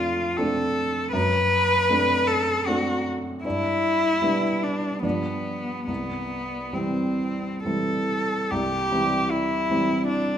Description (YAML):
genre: classical, romantic duo for cello and grand piano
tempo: 63-80 BPM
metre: 3/4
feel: rubato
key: C major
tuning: A4 = 440 Hz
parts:
  - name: rich cello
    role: melody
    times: 0.0-10.4 s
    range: B3 to B4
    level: -23 LUFS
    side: left 1 dB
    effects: none
  - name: warm baby grand piano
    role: accompaniment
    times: 0.0-10.4 s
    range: C2 to D4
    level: -26 LUFS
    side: right 1 dB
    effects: none
room: wet recital hall reverb, RT60 1.3 s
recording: minimal, uncompressed stereo recording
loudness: -22 LUFS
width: side -9 dB against mid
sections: 0.0-8.5 A section; 8.5-10.4 B section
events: none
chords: 0.0 Dm7/F; 1.1 D7/F#; 3.4 G; 5.0 G7; 5.9 C